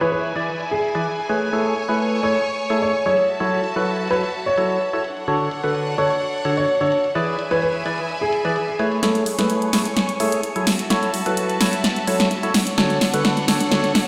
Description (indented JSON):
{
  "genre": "piano house",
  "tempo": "128 BPM",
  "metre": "4/4",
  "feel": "straight",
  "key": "A major",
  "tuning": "A4 = 442 Hz",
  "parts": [
    { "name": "warm grand piano", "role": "melody", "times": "0.0-8.9 s", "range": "G#4 to C#5", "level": "-25 LUFS", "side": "equal", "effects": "digital delay" },
    { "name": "bright studio string section", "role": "sustained chords", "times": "0.0-14.1 s", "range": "D4 to C#6", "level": "-30 LUFS", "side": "equal", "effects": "low-pass filter" },
    { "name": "percussive organ stab", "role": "riff", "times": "0.0-13.9 s", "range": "D3 to D5", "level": "-24 LUFS", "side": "equal", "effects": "subtle chorus, digital delay" },
    { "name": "punchy analog drum machine", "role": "drums", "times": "0.0-14.0 s", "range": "hi-hat, snare drum", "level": "-23 LUFS", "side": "equal", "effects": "low-pass filter on hats, small room ambience, low-pass filter on snare" }
  ],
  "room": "wet lush hall reverb, RT60 1.8 s, studio ambience",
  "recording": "played on a big sound system in a bare room, stone room reverb",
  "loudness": "-21 LUFS",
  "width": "mono",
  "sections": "0.0-9.0 A section; 9.0-14.1 B section",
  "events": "build-up 9.0-14.1; drum fill 9.0-14.1; filter sweep on synth stab 9.0-14.1; filter sweep on string section 9.0-14.1",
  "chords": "0.0 E7; 1.5 Amaj7; 3.2 F#m7; 5.0 Dmaj7; 7.2 E7; 9.0 Amaj7; 10.7 F#m7; 12.5 Dmaj7"
}